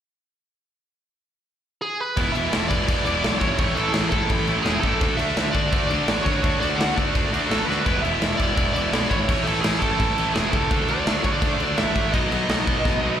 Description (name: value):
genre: punk rock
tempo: 168 BPM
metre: 4/4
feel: straight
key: E mixolydian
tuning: A4 = 440 Hz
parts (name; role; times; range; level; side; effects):
- smooth overdriven lead guitar; melody; 1.8-13.2 s; G#4 to F#5; -26 LUFS; right 2 dB; slapback echo
- distorted electric guitar; riff; 2.2-13.2 s; A2 to F#4; -27 LUFS; left 13 dB; overdrive, slapback echo
- heavy high-gain guitar; riff; 2.2-13.2 s; A2 to F#4; -29 LUFS; right 3 dB; distortion
- tight distorted guitar; riff; 2.2-13.2 s; E2 to D4; -28 LUFS; right 11 dB; distortion, slapback echo
- fuzz picked electric bass; bass; 2.2-13.2 s; E1 to D2; -28 LUFS; equal; overdrive
- big rock drum kit; drums; 2.2-12.9 s; crash cymbal, kick drum, snare drum; -24 LUFS; equal; none
room: little or no reverb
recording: live gig heard through the venue's PA, recital hall reverb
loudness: -19 LUFS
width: side -9 dB against mid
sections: 0.7-2.2 A section; 2.2-13.2 B section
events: drum fill 7.7, 12.9-13.2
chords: 0.7 N.C.; 2.2 E; 3.6 A; 5.0 D; 7.9 E; 9.3 A; 10.7 D; 12.1 B